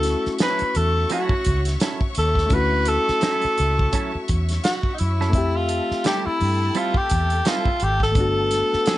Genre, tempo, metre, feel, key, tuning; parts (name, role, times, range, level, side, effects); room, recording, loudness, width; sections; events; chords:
R&B, neo-soul; 85 BPM; 4/4; swing 58% on 16ths; D major; A4 = 440 Hz
warm tenor saxophone; melody; 0.0-9.0 s; Eb4 to B4; -22 LUFS; equal; slapback echo
barky reed electric piano; accompaniment; 0.0-9.0 s; A3 to E5; -28 LUFS; left 3 dB; overdrive
warm studio string section; sustained chords; 0.0-9.0 s; F#4 to C#6; -34 LUFS; left 2 dB
vintage muted fingered electric bass; bass; 0.0-8.8 s; G1 to G2; -22 LUFS; equal
warm soul drum kit; drums; 0.0-9.0 s; hi-hat, kick drum, snare drum; -24 LUFS; equal
semi-hollow electric guitar; second line; 0.4-9.0 s; F#3 to A4; -27 LUFS; right 7 dB
little or no reverb; nothing above 11.0 kHz; -18 LUFS; side -15 dB against mid
0.0-9.0 A section
0.0 Dmaj9 (rootless); 5.3 Fmaj9; 8.2 Gmaj9